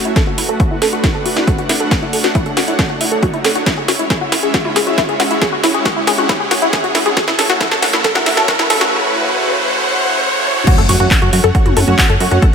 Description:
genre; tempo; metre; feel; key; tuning
uplifting trance; 137 BPM; 4/4; straight; F# minor; A4 = 441 Hz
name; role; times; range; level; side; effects
supersaw pad; sustained chords; 0.0-12.5 s; C#3 to F#5; -20 LUFS; right 1 dB; sidechain pumping
riser and impact; sound effects; 0.5-12.4 s; none; -21 LUFS; equal; none
tight sequenced synth; arpeggios; 0.1-12.5 s; E4 to A4; -18 LUFS; left 1 dB; chorus, phaser, sidechain pumping, dub echo
techno drum kit; drums; 0.1-12.5 s; crash cymbal, handclaps, hi-hat, snare drum, toms; -17 LUFS; equal; high-pass filter on snare, high-pass filter on hats, high-pass filter on toms, high-pass filter on cymbals
electronic kick drum; drums; 0.2-12.5 s; none; -16 LUFS; equal; none
plucky analog bass; bass; 10.8-12.4 s; F#2; -14 LUFS; equal; tube saturation, sidechain pumping
room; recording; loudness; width
moderate lush hall reverb, RT60 2.1 s; high-pass filter; -12 LUFS; side -6 dB against mid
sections
0.0-10.7 A section; 10.7-12.5 B section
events
build-up 0.0-10.7; drum fill 0.0-8.9; filter sweep on synth arpeggio sound 0.0-10.7; filter sweep 0.0-10.7; riser 0.5-10.7; drop 10.7-12.5; impact 10.7-12.4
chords
0.2 D6; 3.7 C#m; 7.2 A6/C#; 10.7 F#m

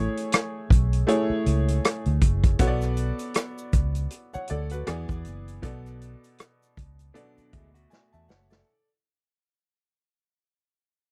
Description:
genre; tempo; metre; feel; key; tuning
lush 1970s-style soul; 79 BPM; 4/4; swing 58% on 16ths; B dorian; A4 = 440 Hz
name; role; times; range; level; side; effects
bright grand piano; accompaniment; 0.0-8.9 s; B2 to A5; -32 LUFS; equal; none
vintage muted fingered electric bass; bass; 0.0-8.6 s; F#1 to E2; -28 LUFS; equal; none
vintage drum kit; drums; 0.2-8.7 s; hi-hat, kick drum, rim click, snare drum; -24 LUFS; equal; none
tube shaker; percussion; 2.6-8.7 s; none; -52 LUFS; equal; none
electric guitar through a small old amp; riff; 7.1-8.6 s; F#3 to F#4; -66 LUFS; equal; none
room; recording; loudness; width
little or no reverb; dry, close 1970s-style studio recording; -25 LUFS; mono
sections
0.0-8.7 A section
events
fade-out 0.0-8.7; drum fill 7.9-8.7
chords
0.0 Amaj7; 2.6 Bm7; 4.9 E7; 5.6 Bm7

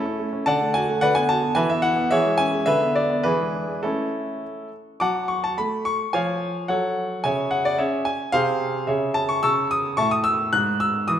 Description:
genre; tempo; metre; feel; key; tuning
classical-period piano sonatina; 108 BPM; 2/4; rubato; A major, F# minor from 5.0 s; A4 = 440 Hz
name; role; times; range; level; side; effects
clear grand piano; solo; 0.0-11.2 s; G#2 to F#6; -20 LUFS; equal; none
room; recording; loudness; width
wet recital hall reverb, RT60 1.7 s; none; -20 LUFS; side -10 dB against mid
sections
0.0-5.0 A section; 5.0-11.2 B section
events
none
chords
0.5 D; 1.0 Bm/D; 1.6 E5; 2.1 C#m/E; 2.7 Bm/D; 3.2 E7; 3.8 A; 5.0 F#m; 6.1 C#/E#; 6.7 F#m; 7.2 C#m; 8.3 G#/B#; 8.9 C#m; 9.4 A/C#; 10.0 A5; 10.5 N.C.

